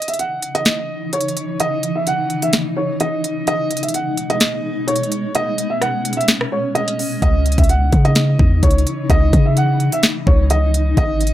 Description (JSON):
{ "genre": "hip hop, trap", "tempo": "128 BPM", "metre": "4/4", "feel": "half-time", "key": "unclear", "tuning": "A4 = 440 Hz", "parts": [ { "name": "dark grand piano", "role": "melody", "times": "0.0-11.3 s", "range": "C#5 to F#5", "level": "-21 LUFS", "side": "right 2 dB", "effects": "low-pass filter" }, { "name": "granular cloud pad", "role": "sustained chords", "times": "0.3-11.3 s", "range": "B2 to D#4", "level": "-23 LUFS", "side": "left 2 dB", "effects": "built-in reverb" }, { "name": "trap drum kit", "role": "drums", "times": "0.0-11.3 s", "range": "hi-hat, kick drum, rim click, snare drum", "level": "-17 LUFS", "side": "equal", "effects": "overdrive" }, { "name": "warm 808-style bass", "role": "bass", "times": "7.2-11.3 s", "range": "G#1 to C#3", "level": "-15 LUFS", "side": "equal", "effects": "none" } ], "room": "little or no reverb", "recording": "none", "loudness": "-15 LUFS", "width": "side -13 dB against mid", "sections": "0.0-11.3 A section", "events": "break 0.0-7.2", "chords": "0.0 C#madd9; 3.5 G#m; 7.2 C#madd9" }